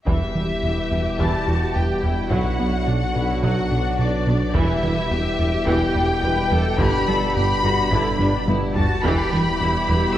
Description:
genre	cinematic, hybrid orchestral and electronic film score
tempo	107 BPM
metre	4/4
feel	straight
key	E minor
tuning	A4 = 439 Hz
part	warm symphonic violin section	melody	0.1-10.2 s	D5 to E6	-27 LUFS	left 2 dB	none
part	rich symphonic violin section	second line	0.1-10.2 s	D5 to B5	-29 LUFS	left 2 dB	none
part	clear symphonic viola section	accompaniment	0.1-10.2 s	D3 to G4	-28 LUFS	right 1 dB	none
part	mellow French horn section	sustained chords	0.1-10.2 s	B3 to E4	-29 LUFS	left 3 dB	none
part	mellow trombone section	sustained chords	0.1-10.2 s	B2 to G3	-29 LUFS	right 1 dB	none
part	rubbery square bass	riff	0.1-10.1 s	E2 to B3	-24 LUFS	right 1 dB	none
part	mellow tuba	bass	0.1-10.2 s	E1 to B1	-29 LUFS	right 2 dB	none
part	pure sine sub bass	bass	0.1-10.2 s	E1 to B1	-30 LUFS	equal	none
part	rich symphonic double bass section	bass	0.1-10.2 s	B1 to G2	-30 LUFS	right 2 dB	none
part	taiko ensemble	drums	0.1-9.6 s	none	-27 LUFS	equal	none
part	clear symphonic cello section	bass	1.2-10.2 s	D4 to B4	-29 LUFS	right 1 dB	none
room	moderate scoring stage reverb, RT60 2.1 s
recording	worn, warbling old tape, cassette tape, warbly pitch drift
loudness	-18 LUFS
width	side -12 dB against mid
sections	0.1-10.2 A section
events	drum fill 8.2-9.0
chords	0.1 Em; 2.3 Bm; 4.6 Em; 6.8 G; 9.0 Em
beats	| 0.07 0.63 1.19 1.75 | 2.31 2.87 3.43 3.99 | 4.55 5.12 5.67 6.24 | 6.80 7.36 7.92 8.48 | 9.04 9.60 10.16

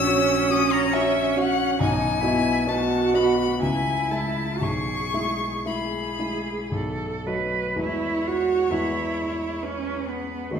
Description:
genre	classical, slow romantic movement for piano trio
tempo	55-71 BPM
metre	3/4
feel	rubato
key	E major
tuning	A4 = 440 Hz
part	rich violin	melody	0.0-10.6 s	B4 to E6	-27 LUFS	left 6 dB	none
part	rich cello	second line	0.0-10.6 s	B3 to B4	-26 LUFS	right 5 dB	none
part	dark baby grand piano	accompaniment	0.0-10.6 s	A#1 to E5	-25 LUFS	equal	none
room	wet recital hall reverb, RT60 1.3 s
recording	heard from further back in the room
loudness	-21 LUFS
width	side -7 dB against mid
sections	0.0-7.8 A section; 7.8-10.6 B section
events	none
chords	0.0 F#7/A#; 1.8 B; 3.6 C#m; 4.6 E/B; 6.7 B; 7.8 E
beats	0.06 0.92 | 1.80 2.67 3.62 | 4.63 5.68 6.73 | 7.79 8.72 9.62 | 10.53

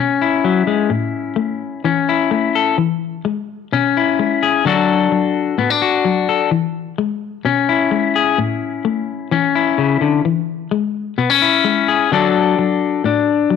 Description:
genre	highlife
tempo	129 BPM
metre	4/4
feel	straight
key	E mixolydian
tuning	A4 = 441 Hz
part	electric guitar at the edge of break-up	solo	0.0-13.6 s	A2 to A4	-14 LUFS	left 7 dB	none
room	moderate echo chamber reverb, RT60 1.4 s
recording	none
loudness	-15 LUFS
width	side -6 dB against mid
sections	0.0-13.6 A section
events	none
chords	0.0 E6; 0.9 A; 2.8 E6; 4.6 D; 6.5 E6; 8.4 A; 10.2 E6; 12.1 D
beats	0.43 | 0.90 1.37 1.84 2.31 | 2.78 3.25 3.71 4.18 | 4.65 5.12 5.58 6.05 | 6.51 6.98 7.45 7.91 | 8.38 8.84 9.31 9.77 | 10.24 10.70 11.17 11.63 | 12.10 12.57 13.03 13.50

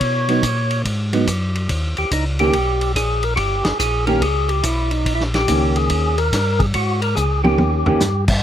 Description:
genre	soul jazz organ trio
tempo	142 BPM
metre	4/4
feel	swing 65% on 8ths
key	unclear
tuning	A4 = 440 Hz
part	percussive tonewheel organ	melody	0.0-8.2 s	D#4 to C#5	-21 LUFS	equal	slow rotary speaker, overdrive
part	mellow tonewheel organ	bass	0.0-8.4 s	G1 to B2	-20 LUFS	equal	slow rotary speaker
part	warm soul drum kit	drums	0.0-8.4 s	crash cymbal, hi-hat, kick drum, ride cymbal, snare drum, toms	-22 LUFS	equal	none
part	vintage hollow-body jazz guitar	accompaniment	0.3-8.0 s	D#3 to G4	-19 LUFS	right 2 dB	none
room	little or no reverb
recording	close, detailed microphones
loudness	-16 LUFS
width	side -10 dB against mid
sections	0.0-8.4 A section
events	drum fill 7.2-8.0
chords	0.0 G#m7; 1.7 D#7; 6.8 G#5; 7.6 D#7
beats	| 0.01 0.43 0.85 1.27 | 1.69 2.12 2.54 2.96 | 3.38 3.80 4.22 4.64 | 5.07 5.49 5.91 6.33 | 6.75 7.17 7.59 8.02

